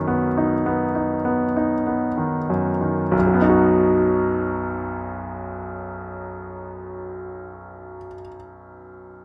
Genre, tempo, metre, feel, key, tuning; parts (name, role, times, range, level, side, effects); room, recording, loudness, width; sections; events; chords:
classical, romantic nocturne for solo piano; 30-36 BPM (dotted quarters); 12/8; rubato; B major; A4 = 440 Hz
bright grand piano; solo; 0.0-9.2 s; B1 to B4; -23 LUFS; equal
light reverb; close, detailed microphones; -21 LUFS; mono
0.0-3.1 A section; 3.1-9.2 B section
slowing down 0.0-3.1
0.0 B